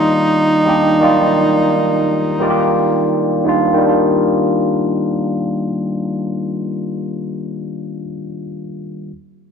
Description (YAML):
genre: soul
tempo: 86 BPM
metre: 4/4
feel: swing 54% on 16ths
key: Eb major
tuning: A4 = 440 Hz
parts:
  - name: breathy tenor saxophone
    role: melody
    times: 0.0-3.1 s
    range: Eb4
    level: -16 LUFS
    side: right 1 dB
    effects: none
  - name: barky tine electric piano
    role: accompaniment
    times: 0.0-9.1 s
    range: Eb3 to D5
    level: -16 LUFS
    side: left 1 dB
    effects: overdrive, tube saturation, phaser
room: light reverb, small room ambience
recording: none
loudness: -13 LUFS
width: side -6 dB against mid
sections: 0.0-3.8 A section; 3.8-6.6 B section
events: none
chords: 0.0 Ebmaj9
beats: 0.33 | 1.02 1.72 2.42 3.11 | 3.81 4.51 5.21 5.90